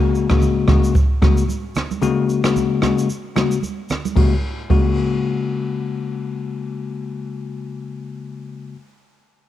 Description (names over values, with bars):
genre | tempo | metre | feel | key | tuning
afrobeats | 112 BPM | 4/4 | swing 58% on 16ths | F# major | A4 = 440 Hz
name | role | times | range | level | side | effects
bell-like tine electric piano | accompaniment | 0.0-8.8 s | C#3 to F#4 | -20 LUFS | left 5 dB | cassette tape
jazz brush drum kit | drums | 0.1-4.9 s | kick drum, ride cymbal, rim click, shaker | -18 LUFS | right 1 dB | cassette tape
congas | percussion | 0.3-4.9 s | none | -26 LUFS | right 8 dB | none
room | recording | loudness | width
light reverb, studio ambience | home recording on cassette | -17 LUFS | side -12 dB against mid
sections
0.0-4.2 A section; 4.2-8.5 B section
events
none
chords
0.0 F#add9